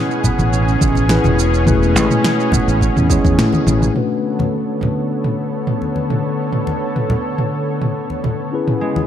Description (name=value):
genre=sunset chillout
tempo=105 BPM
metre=4/4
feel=straight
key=B dorian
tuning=A4 = 440 Hz
part: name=mellow tine electric piano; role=accompaniment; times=0.0-9.1 s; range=A3 to C#5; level=-21 LUFS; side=moving between left 5 dB and right 4 dB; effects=auto-pan, low-pass filter, tape echo
part: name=lush unison pad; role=sustained chords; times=0.0-9.1 s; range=B2 to C#5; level=-21 LUFS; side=equal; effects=chorus
part: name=concert harp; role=arpeggios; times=0.0-9.1 s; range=G#3 to D4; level=-25 LUFS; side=right 2 dB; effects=tape echo
part: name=wind-like tuned noise texture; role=texture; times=0.0-4.0 s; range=F#5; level=-34 LUFS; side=right 1 dB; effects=none
part: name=deep house drum kit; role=drums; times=0.1-8.8 s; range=shaker, snare drum, toms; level=-20 LUFS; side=equal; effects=none
part: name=electronic kick drum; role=drums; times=0.2-3.4 s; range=none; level=-18 LUFS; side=equal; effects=none
part: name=congas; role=percussion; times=0.2-9.1 s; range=none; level=-23 LUFS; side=left 1 dB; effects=none
part: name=modern bright fingered electric bass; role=bass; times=0.4-3.9 s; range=E1 to A2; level=-16 LUFS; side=equal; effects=tube saturation
room=light reverb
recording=dark, warm production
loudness=-14 LUFS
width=side -10 dB against mid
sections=0.0-4.0 A section; 4.0-9.1 B section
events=drum fill 3.1-4.0; band accent 3.4; filter sweep on tine electric piano 4.0-9.1; filter sweep on analog synth pad 4.0-9.1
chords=0.0 Amaj9; 4.0 Bm9; 8.5 C#m7